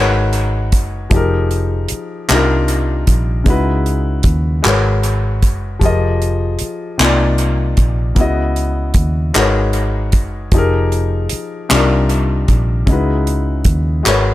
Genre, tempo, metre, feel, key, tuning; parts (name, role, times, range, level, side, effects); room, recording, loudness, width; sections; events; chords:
slow six-eight R&B; 51 BPM (dotted quarters); 6/8; straight; F minor; A4 = 440 Hz
warm grand piano; accompaniment; 0.0-14.3 s; C3 to Eb5; -18 LUFS; left 3 dB
vintage muted fingered electric bass; bass; 0.0-14.3 s; F1 to Eb2; -17 LUFS; equal
damped 70s drum kit; drums; 0.3-14.2 s; handclaps, hi-hat, kick drum; -16 LUFS; equal; analog delay
small room ambience; echo-heavy mix; -13 LUFS; side -15 dB against mid
0.0-14.3 A section
0.0 Abm11; 1.1 Fm11; 2.3 Cm11; 3.5 Dbm11; 4.6 Abm11; 5.8 Fm11; 7.0 Cm11; 8.2 Dbm11; 9.3 Abm11; 10.5 Fm11; 11.7 Cm11; 12.9 Dbm11